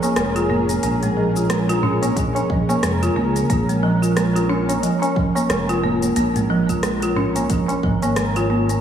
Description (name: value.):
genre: organic downtempo.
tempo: 90 BPM.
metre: 4/4.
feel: swing 58% on 16ths.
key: Bb minor pentatonic.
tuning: A4 = 440 Hz.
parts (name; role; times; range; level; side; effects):
warm analog pad; sustained chords; 0.0-8.8 s; Db4 to Bb4; -26 LUFS; equal; chorus, sidechain pumping.
folk marimba with medium mallets; arpeggios; 0.0-8.8 s; F3 to F4; -20 LUFS; right 1 dB; tape echo.
afro-pop drum kit; drums; 0.0-8.8 s; hi-hat, rim click, shaker; -27 LUFS; equal; slapback echo.
tabla; percussion; 0.0-8.8 s; none; -27 LUFS; equal; none.
smooth synth bass; bass; 0.2-8.8 s; F1 to Db2; -24 LUFS; equal; none.
electronic kick drum; drums; 2.2-8.0 s; none; -25 LUFS; equal; none.
room: moderate lush hall reverb, RT60 2.0 s, digital ambience.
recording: big arena sound, small room reverb.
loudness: -17 LUFS.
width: side -9 dB against mid.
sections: 0.0-8.8 A section.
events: none.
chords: 0.0 Bbm7/F.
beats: 0.16 | 0.83 1.50 2.16 2.83 | 3.50 4.16 4.83 5.50 | 6.16 6.83 7.50 8.16.